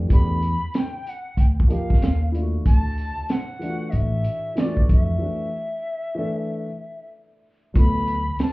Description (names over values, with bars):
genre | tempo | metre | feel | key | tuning
hip hop, jazz-hop | 94 BPM | 4/4 | swing 65% on 16ths | unclear | A4 = 440 Hz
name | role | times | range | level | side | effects
dark grand piano | accompaniment | 0.0-8.2 s | E3 to A4 | -29 LUFS | equal | plate reverb
upright bass | bass | 0.0-8.3 s | A1 to F2 | -22 LUFS | equal | none
bright reedy bansuri | melody | 0.1-8.5 s | D5 to B5 | -29 LUFS | left 1 dB | plate reverb
crunchy breakbeat drum kit | drums | 0.1-8.5 s | hi-hat, kick drum, snare drum | -19 LUFS | equal | none
room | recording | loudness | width
light reverb | heard muffled through a wall, club reverb, EQ | -20 LUFS | side -21 dB against mid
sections
0.0-7.8 A section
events
break 5.2-7.8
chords
0.0 Em11; 2.0 D#sus2; 2.7 Dadd9; 5.2 N.C.; 7.8 D